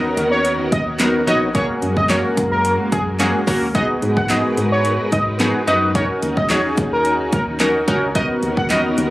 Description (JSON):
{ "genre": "dance-pop", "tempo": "109 BPM", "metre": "4/4", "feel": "straight", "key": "G# minor", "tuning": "A4 = 444 Hz", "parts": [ { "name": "funky polysynth comp", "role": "accompaniment", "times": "0.0-9.1 s", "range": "A#3 to C#5", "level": "-20 LUFS", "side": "equal", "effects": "chorus, sidechain pumping" }, { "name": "soft string machine", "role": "sustained chords", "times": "0.0-9.1 s", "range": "D#3 to B4", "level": "-24 LUFS", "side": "equal", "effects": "ensemble chorus, sidechain pumping" }, { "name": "solid FM bass", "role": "bass", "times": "0.0-9.1 s", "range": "A#1 to G#2", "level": "-24 LUFS", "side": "equal", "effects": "sidechain pumping" }, { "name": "pop drum kit", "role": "drums", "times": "0.2-9.1 s", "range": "handclaps, hi-hat, kick drum, snare drum", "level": "-22 LUFS", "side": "equal", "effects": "overdrive" }, { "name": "octave-doubled lead", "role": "melody", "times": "0.3-8.8 s", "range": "G#4 to F#5", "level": "-20 LUFS", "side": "equal", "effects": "chorus, sidechain pumping" } ], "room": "light reverb", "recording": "recorded on a phone in the room, club ambience", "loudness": "-15 LUFS", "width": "side -17 dB against mid", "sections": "0.0-9.1 A section", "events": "none", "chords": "0.0 Bmaj7; 1.5 F#add9; 3.7 G#m7; 6.0 D#m7; 8.2 Bmaj7" }